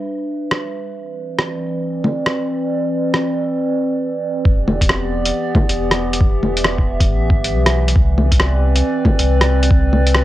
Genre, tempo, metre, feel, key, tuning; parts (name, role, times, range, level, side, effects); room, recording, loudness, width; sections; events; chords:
future garage; 137 BPM; 4/4; swing 64% on 16ths; E minor; A4 = 445 Hz
warbly tape-like pad; sustained chords; 0.0-10.2 s; E3 to E5; -20 LUFS; right 1 dB; chorus, built-in reverb, sidechain pumping
lo-fi sampler-style drum kit; drums; 0.5-10.2 s; bongos, hi-hat, rim click; -18 LUFS; equal; low-pass filter on hats, studio reverb, low-pass filter on snare, low-pass filter on perc
warm sub bass; bass; 4.5-10.2 s; E1 to C2; -17 LUFS; equal; sidechain pumping
electronic kick drum; drums; 4.5-9.8 s; -15 LUFS; equal; studio reverb
digital ambience; home recording on cassette; -14 LUFS; side -15 dB against mid
0.0-4.5 A section; 4.5-10.2 B section
filter sweep on drum 0.0-4.5
0.0 Em7; 0.9 Cmaj9; 4.5 Em7; 8.0 Cmaj9